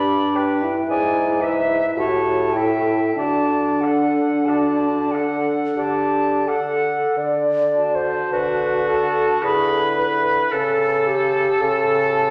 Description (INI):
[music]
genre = classical, slow romantic movement for wind quintet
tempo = 39-58 BPM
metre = 3/4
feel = rubato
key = D major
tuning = A4 = 438 Hz
[part]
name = bright concert flute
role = melody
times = 0.0-12.3 s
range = E5 to B5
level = -26 LUFS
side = equal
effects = none
[part]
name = clear oboe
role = second line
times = 0.0-12.3 s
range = F#4 to F#5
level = -28 LUFS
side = equal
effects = none
[part]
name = warm French horn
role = accompaniment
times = 0.0-12.3 s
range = D4 to G4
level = -25 LUFS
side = equal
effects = none
[part]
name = warm clarinet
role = accompaniment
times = 0.0-12.3 s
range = F#4 to D5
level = -25 LUFS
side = equal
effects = none
[part]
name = warm bassoon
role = bass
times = 0.0-12.3 s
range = G2 to D3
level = -27 LUFS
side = equal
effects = none
[sound]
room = wet recital hall reverb, RT60 1.3 s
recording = none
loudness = -19 LUFS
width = mono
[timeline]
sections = 0.0-7.2 A section; 7.2-12.3 B section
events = none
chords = 0.0 G; 0.9 E7/G#; 2.0 A7; 3.2 D; 9.4 E7/D; 10.5 A7/C#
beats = 0.89 1.97 | 3.17 4.47 5.78 | 7.17 8.33 9.43 | 10.53 11.61